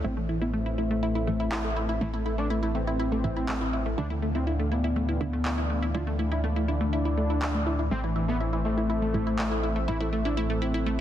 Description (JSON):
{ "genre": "melodic techno", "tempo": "122 BPM", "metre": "4/4", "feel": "straight", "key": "A minor", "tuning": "A4 = 440 Hz", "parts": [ { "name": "fat analog lead", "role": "melody", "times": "0.0-11.0 s", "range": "D3 to F4", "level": "-31 LUFS", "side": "left 1 dB", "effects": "chorus, ping-pong delay" }, { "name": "dark analog pad", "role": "sustained chords", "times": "0.0-11.0 s", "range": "A3 to F5", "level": "-36 LUFS", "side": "left 1 dB", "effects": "chorus" }, { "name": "wide unison pluck", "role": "arpeggios", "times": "0.0-10.9 s", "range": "A3 to E4", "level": "-32 LUFS", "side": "equal", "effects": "cassette tape, digital delay" }, { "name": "filtered dub chord stab", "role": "stabs", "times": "0.0-11.0 s", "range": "A2 to D4", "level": "-38 LUFS", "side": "right 2 dB", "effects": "none" }, { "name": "dark detuned saw bass", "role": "bass", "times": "0.0-11.0 s", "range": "A1 to D2", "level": "-30 LUFS", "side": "equal", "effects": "none" }, { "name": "overtone-sweeping drone", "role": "drone", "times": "0.0-11.0 s", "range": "A2 to E3", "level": "-38 LUFS", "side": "left 2 dB", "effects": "chorus, built-in reverb" }, { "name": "electronic handclaps", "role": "drums", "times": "1.5-9.5 s", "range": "none", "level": "-37 LUFS", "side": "equal", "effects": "none" } ], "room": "digital ambience", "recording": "dense, heavily limited modern master", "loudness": "-25 LUFS", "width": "side -11 dB against mid", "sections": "0.0-11.0 A section", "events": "none", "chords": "0.0 Am; 4.0 Dm; 7.9 Am" }